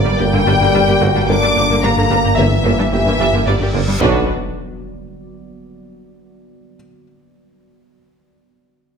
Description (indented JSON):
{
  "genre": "cinematic, hybrid orchestral and electronic film score",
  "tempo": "110 BPM",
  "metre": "5/4",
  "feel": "straight",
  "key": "B harmonic minor",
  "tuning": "A4 = 440 Hz",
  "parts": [
    { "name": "rich symphonic violin section", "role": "melody", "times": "0.0-4.3 s", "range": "B4 to D6", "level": "-21 LUFS", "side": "left 2 dB", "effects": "none" },
    { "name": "rich symphonic violin section", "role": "second line", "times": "0.0-4.3 s", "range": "B3 to D6", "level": "-22 LUFS", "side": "left 2 dB", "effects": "none" },
    { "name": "deep dark ambient pad", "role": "sustained chords", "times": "0.0-4.3 s", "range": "D3 to D5", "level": "-26 LUFS", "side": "left 1 dB", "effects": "chorus, built-in reverb" },
    { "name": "mellow French horn section", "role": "sustained chords", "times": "0.0-4.2 s", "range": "D3 to D4", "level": "-21 LUFS", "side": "left 3 dB", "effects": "none" },
    { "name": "warm trombone section", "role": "sustained chords", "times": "0.0-4.2 s", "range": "F#3 to D4", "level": "-26 LUFS", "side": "right 5 dB", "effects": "none" },
    { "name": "warm sub bass", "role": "bass", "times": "0.0-4.3 s", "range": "G1 to B1", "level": "-26 LUFS", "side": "equal", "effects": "none" },
    { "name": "clear symphonic viola section", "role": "accompaniment", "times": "0.1-4.3 s", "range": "D3 to G4", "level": "-22 LUFS", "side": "right 1 dB", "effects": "none" },
    { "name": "rubbery square bass", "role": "riff", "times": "0.1-4.0 s", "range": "G2 to G3", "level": "-21 LUFS", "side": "left 3 dB", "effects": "none" },
    { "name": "rich symphonic cello section", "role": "bass", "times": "0.1-4.3 s", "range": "G2 to B2", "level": "-23 LUFS", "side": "right 2 dB", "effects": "none" },
    { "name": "rich symphonic double bass section", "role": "bass", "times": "0.2-4.3 s", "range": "G1 to B1", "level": "-24 LUFS", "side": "right 3 dB", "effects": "none" },
    { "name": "warm tuba", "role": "bass", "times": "0.2-4.2 s", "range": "G1 to B1", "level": "-23 LUFS", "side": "right 4 dB", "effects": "none" },
    { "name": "bright grand piano", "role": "texture", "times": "1.0-4.0 s", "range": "F#4 to F#5", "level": "-29 LUFS", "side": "left 3 dB", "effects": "none" },
    { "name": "reverse cymbal and impact", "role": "sound effects", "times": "3.5-6.7 s", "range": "none", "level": "-29 LUFS", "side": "left 1 dB", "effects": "none" }
  ],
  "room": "wet recital hall reverb, RT60 1.3 s",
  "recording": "none",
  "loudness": "-12 LUFS",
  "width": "side -6 dB against mid",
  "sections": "0.0-4.0 A section; 4.0-6.7 B section",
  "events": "reverse cymbal 3.5-4.0; impact 4.0-6.7",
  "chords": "0.0 Gm; 4.0 Bm"
}